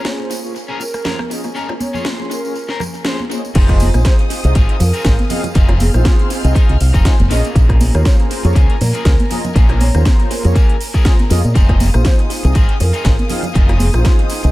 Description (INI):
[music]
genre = nu-disco, nu disco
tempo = 120 BPM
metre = 4/4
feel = swing 55% on 16ths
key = Bb minor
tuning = A4 = 440 Hz
[part]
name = mellow synth brass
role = accompaniment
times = 0.0-14.5 s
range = Bb3 to C6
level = -24 LUFS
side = equal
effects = chorus, sidechain pumping, tape echo
[part]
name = warm chamber violin section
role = sustained chords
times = 0.0-14.5 s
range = Bb3 to F6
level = -30 LUFS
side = left 2 dB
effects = sidechain pumping
[part]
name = electric guitar at the edge of break-up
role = riff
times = 0.0-14.5 s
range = Bb3 to Db5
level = -27 LUFS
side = left 4 dB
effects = lush chorus, tape echo
[part]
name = house drum kit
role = drums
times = 0.0-14.5 s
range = crash cymbal, hi-hat, rim click, snare drum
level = -25 LUFS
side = equal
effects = tape echo
[part]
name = breathy mellow concert flute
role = melody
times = 0.1-14.1 s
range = F4 to Db5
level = -28 LUFS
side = right 2 dB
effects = tape echo
[part]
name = tambourine, bongos and congas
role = percussion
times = 0.1-14.5 s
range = none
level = -25 LUFS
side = right 1 dB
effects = tape echo
[part]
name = fingered electric bass with an envelope filter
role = bass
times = 3.6-14.5 s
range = F1 to Bb2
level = -13 LUFS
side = equal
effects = sidechain pumping
[part]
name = electronic kick drum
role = drums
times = 3.6-14.2 s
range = none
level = -12 LUFS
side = equal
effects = none
[sound]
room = little or no reverb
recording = echo-heavy mix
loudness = -12 LUFS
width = side -18 dB against mid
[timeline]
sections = 0.0-3.6 A section; 3.6-14.5 B section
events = drop 3.6-14.5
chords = 0.0 Bbm7; 3.6 Fm7; 7.3 Bbm7; 11.6 Fm7